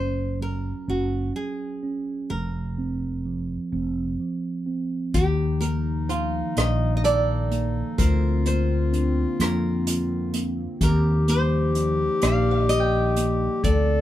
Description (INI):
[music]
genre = acoustic folk-pop ballad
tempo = 42 BPM (dotted quarters)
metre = 6/8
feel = straight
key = unclear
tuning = A4 = 438 Hz
[part]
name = nylon-string guitar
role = melody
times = 0.0-14.0 s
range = Gb4 to F5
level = -28 LUFS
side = equal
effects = none
[part]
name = mellow tine electric piano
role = accompaniment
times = 0.0-14.0 s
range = D3 to G4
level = -29 LUFS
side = right 4 dB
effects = none
[part]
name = mellow fretless electric bass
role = bass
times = 0.0-14.0 s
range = F1 to F2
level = -24 LUFS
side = left 1 dB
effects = none
[part]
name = mellow clarinet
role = second line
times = 5.1-14.0 s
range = Eb4 to A4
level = -28 LUFS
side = left 4 dB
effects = none
[part]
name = dark analog pad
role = sustained chords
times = 5.1-14.0 s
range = D3 to Eb4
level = -33 LUFS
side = left 1 dB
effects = chorus
[part]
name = unplugged drum kit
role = drums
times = 5.1-13.9 s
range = hi-hat, kick drum, rim click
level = -27 LUFS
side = equal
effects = none
[part]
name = picked swing-style acoustic guitar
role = arpeggios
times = 6.1-14.0 s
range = F4 to G5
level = -33 LUFS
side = right 4 dB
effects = none
[sound]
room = light reverb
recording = band playing live in one room, faint mains hum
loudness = -21 LUFS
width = side -13 dB against mid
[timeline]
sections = 0.0-5.1 A section; 5.1-14.0 B section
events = none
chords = 0.0 Gb5; 2.3 Fsus4; 5.1 Ebadd9; 8.0 Bbadd9/D; 10.8 Ebadd9